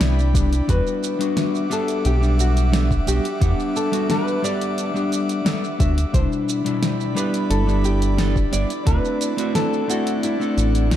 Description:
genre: sunset chillout.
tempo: 88 BPM.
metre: 4/4.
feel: straight.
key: E minor.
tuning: A4 = 439 Hz.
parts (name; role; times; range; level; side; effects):
mellow electric guitar; accompaniment; 0.0-11.0 s; B2 to F#5; -24 LUFS; moving between left 6 dB and right 7 dB; auto-pan, ping-pong delay.
airy breathy pad; sustained chords; 0.0-11.0 s; G3 to D6; -29 LUFS; right 1 dB; chorus, vintage 12-bit sampler grit.
concert harp; arpeggios; 0.0-11.0 s; G3 to D5; -29 LUFS; left 4 dB; ping-pong delay.
round analog bass; bass; 0.0-11.0 s; G1 to E2; -19 LUFS; equal; none.
deep house drum kit; drums; 0.0-11.0 s; hi-hat, shaker, snare drum; -26 LUFS; equal; none.
electronic kick drum; drums; 0.3-9.0 s; none; -21 LUFS; equal; none.
nylon-string guitar; melody; 0.7-11.0 s; E4 to E5; -27 LUFS; left 2 dB; vintage 12-bit sampler grit, ping-pong delay.
room: moderate concert hall reverb, RT60 2.2 s.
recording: dark, warm production.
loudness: -18 LUFS.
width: side -11 dB against mid.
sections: 0.0-11.0 A section.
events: none.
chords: 0.0 Cmaj9; 0.7 Em9; 6.1 Cmaj9; 8.9 D9.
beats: 0.01 | 0.69 1.37 2.05 2.73 | 3.42 4.10 4.78 5.46 | 6.14 6.83 7.51 8.19 | 8.87 9.55 10.23 10.92.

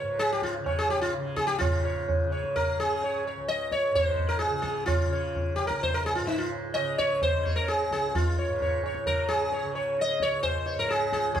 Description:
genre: indian classical, Hindustani.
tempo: 129 BPM.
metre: 7/4.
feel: straight.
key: Db raga yaman.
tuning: A4 = 440 Hz.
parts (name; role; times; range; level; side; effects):
sitar; melody; 0.0-11.4 s; Eb4 to Eb5; -26 LUFS; equal; none.
tanpura; drone; 0.0-11.4 s; Db2 to Db3; -37 LUFS; right 2 dB; none.
tabla; percussion; 0.2-11.4 s; none; -31 LUFS; right 1 dB; none.
room: wet large studio reverb, RT60 1.1 s.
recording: band playing live in one room.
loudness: -25 LUFS.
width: side -9 dB against mid.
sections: 0.0-1.6 A section; 1.6-11.4 B section.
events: speeding up 0.0-11.4.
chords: none.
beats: 0.19 0.66 1.13 | 1.61 2.08 2.55 3.02 3.49 3.96 4.43 | 4.89 5.36 5.82 6.29 6.75 7.21 7.68 | 8.14 8.60 9.06 9.52 9.97 10.43 10.89 | 11.34.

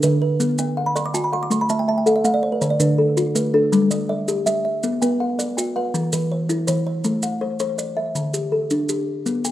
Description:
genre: southern african traditional, mbira-style interlocking cycle.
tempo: 108 BPM (dotted quarters).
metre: 12/8.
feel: straight.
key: A equiheptatonic.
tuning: A4 = 440 Hz.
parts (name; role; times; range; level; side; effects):
kalimba; arpeggios; 0.0-9.5 s; D3 to G5+29c; -21 LUFS; left 2 dB; slapback echo.
kalimba; arpeggios; 0.0-7.4 s; D3 to D6; -22 LUFS; right 2 dB; none.
maracas; percussion; 0.0-9.5 s; none; -28 LUFS; right 3 dB; none.
room: moderate plate reverb, RT60 2.6 s.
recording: rough home demo mix.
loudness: -18 LUFS.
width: side -13 dB against mid.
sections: 0.0-7.0 A section; 7.0-9.5 B section.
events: kalimba fill 0.7-2.6.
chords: 0.4 Bm; 1.5 A5; 2.6 D; 3.7 G; 4.8 Bm; 5.9 Em; 7.0 Am; 8.2 D5.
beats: | 0.40 0.96 1.51 2.06 | 2.62 3.17 3.73 4.28 | 4.83 5.39 5.94 6.50 | 7.05 7.60 8.16 8.71 | 9.27.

